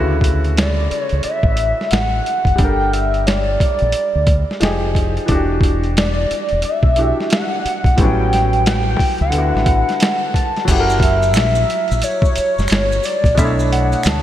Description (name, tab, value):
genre	R&B, neo-soul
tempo	89 BPM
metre	4/4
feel	swing 64% on 16ths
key	unclear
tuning	A4 = 440 Hz
part	clear upright piano	accompaniment	0.0-14.2 s	A2 to C#5	-22 LUFS	equal	none
part	deep dub fingered electric bass	bass	0.0-14.2 s	E1 to D2	-18 LUFS	equal	none
part	boom bap sampler-style drum kit	drums	0.2-14.2 s	crash cymbal, hi-hat, kick drum, snare drum	-18 LUFS	equal	none
part	hollow square lead	melody	0.6-14.2 s	C#5 to A5	-19 LUFS	equal	chorus
part	maracas and finger snaps	percussion	10.7-14.2 s	none	-30 LUFS	right 3 dB	none
room	wet lush hall reverb, RT60 2.6 s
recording	dreamy mix soaked in reverb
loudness	-14 LUFS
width	side -12 dB against mid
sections	0.0-10.7 A section; 10.7-14.2 B section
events	none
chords	0.0 Dmaj9; 2.6 Gmadd9; 4.6 Fm9; 5.3 Em9; 8.0 A13; 9.3 D69; 10.7 F#7b9; 13.4 Bm11